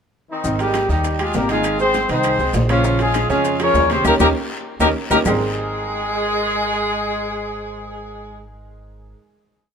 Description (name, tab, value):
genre	latin, salsa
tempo	199 BPM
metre	4/4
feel	straight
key	Ab major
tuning	A4 = 440 Hz
part	warm horn section	melody	0.3-8.4 s	Eb3 to Db5	-19 LUFS	left 1 dB	none
part	bright concert grand piano	accompaniment	0.4-9.1 s	Db3 to G5	-23 LUFS	right 4 dB	none
part	upright bass	bass	0.4-9.1 s	Ab1 to F2	-24 LUFS	equal	none
part	congas	percussion	0.4-5.3 s	none	-28 LUFS	left 5 dB	none
part	maracas	percussion	0.4-5.3 s	none	-36 LUFS	left 7 dB	none
part	bongos	percussion	0.5-5.3 s	none	-30 LUFS	left 5 dB	none
part	guiro	percussion	0.5-5.3 s	none	-36 LUFS	left 4 dB	none
part	timbales	percussion	0.6-5.3 s	none	-29 LUFS	right 5 dB	none
part	claves	percussion	0.7-5.3 s	none	-31 LUFS	left 12 dB	none
room	moderate plate reverb, RT60 3.2 s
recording	minimal, uncompressed stereo recording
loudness	-16 LUFS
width	side -7 dB against mid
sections	0.0-0.4 pickup bar; 0.4-5.3 verse; 5.3-7.7 final chord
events	drum fill 4.1-5.3; band accent 4.1-5.3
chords	0.4 Abmaj7sus2; 1.6 Fm7/Ab; 2.9 Bbm7; 4.1 Eb7; 5.3 Abmaj9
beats	0.14 | 0.45 0.75 1.05 1.35 | 1.65 1.95 2.25 2.55 | 2.85 3.15 3.45 3.75 | 4.05 4.36 4.66 4.96 | 5.26 5.56 5.86 6.17 | 6.47 6.77 7.07 7.38